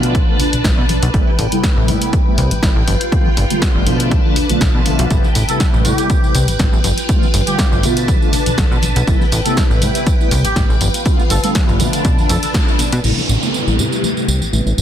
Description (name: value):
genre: filtered disco house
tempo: 121 BPM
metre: 4/4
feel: swing 54% on 16ths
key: A minor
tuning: A4 = 440 Hz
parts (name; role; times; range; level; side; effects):
- mellow synth brass; accompaniment; 0.0-14.7 s; C3 to F4; -21 LUFS; equal; chorus, phaser, sidechain pumping, low-pass filter
- string machine, full ensemble; sustained chords; 0.0-14.8 s; D4 to A5; -22 LUFS; left 1 dB; phaser, ensemble chorus, sidechain pumping, low-pass filter
- plucky analog bass; bass; 0.0-14.8 s; G1 to B2; -17 LUFS; equal; sidechain pumping, low-pass filter
- punchy analog drum machine; drums; 0.0-14.8 s; crash cymbal, hi-hat, snare drum, tambourine; -22 LUFS; equal; sidechain pumping on hats, sidechain pumping on cymbals, sidechain pumping on perc
- tambourine and congas; percussion; 0.0-14.8 s; none; -27 LUFS; left 4 dB; none
- electronic kick drum; drums; 0.1-12.7 s; none; -15 LUFS; equal; overdrive
- muted trumpet section; melody; 5.5-12.5 s; G4 to A4; -25 LUFS; right 2 dB; sidechain pumping, low-pass filter, ping-pong delay
- downlifter; sound effects; 13.0-14.8 s; none; -22 LUFS; right 1 dB; none
room: light reverb, digital ambience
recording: dense, heavily limited modern master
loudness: -12 LUFS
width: side -10 dB against mid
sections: 0.0-13.0 A section; 13.0-14.8 B section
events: band accent 12.5; filter sweep 13.0-14.8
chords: 0.0 Bm7b5; 1.1 Am9; 2.9 G7; 3.9 Bm7b5; 5.1 Am9; 6.8 G7; 7.8 Bm7b5; 9.1 Am9; 10.8 G7; 11.8 Bm7b5; 13.0 Am9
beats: 0.15 0.64 | 1.14 1.64 2.13 2.63 | 3.12 3.62 4.12 4.61 | 5.11 5.60 6.10 6.59 | 7.09 7.59 8.08 8.58 | 9.07 9.57 10.06 10.56 | 11.06 11.55 12.05 12.54 | 13.04 13.54 14.03 14.53